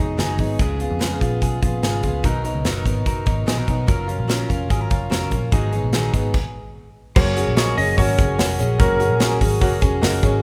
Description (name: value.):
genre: jangly indie pop.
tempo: 146 BPM.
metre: 4/4.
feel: straight.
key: F# major.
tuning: A4 = 442 Hz.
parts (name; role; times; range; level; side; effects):
picked steel-string acoustic guitar; accompaniment; 0.0-10.4 s; G#2 to A#4; -28 LUFS; equal; none.
direct-recorded clean electric guitar; arpeggios; 0.0-10.4 s; G#2 to A#4; -30 LUFS; equal; none.
vintage muted picked electric bass; bass; 0.0-10.4 s; E#1 to E#2; -26 LUFS; equal; none.
modern studio drum kit; drums; 0.2-10.3 s; crash cymbal, hi-hat, kick drum, snare drum; -23 LUFS; equal; none.
lightly driven lead guitar; melody; 7.2-9.4 s; A#4 to D#5; -25 LUFS; equal; none.
reed electric piano; accompaniment; 7.2-10.4 s; F#4 to D#5; -29 LUFS; equal; none.
room: moderate recital hall reverb, RT60 1.7 s.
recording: recorded in a church or concert hall.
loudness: -20 LUFS.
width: mono.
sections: 0.0-7.2 A section; 7.2-10.4 B section.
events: stop 6.3-7.2.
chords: 0.0 G#m7; 0.6 C#7; 2.2 Bmaj7; 3.9 F#maj7; 5.5 G#m7; 7.2 F#add9.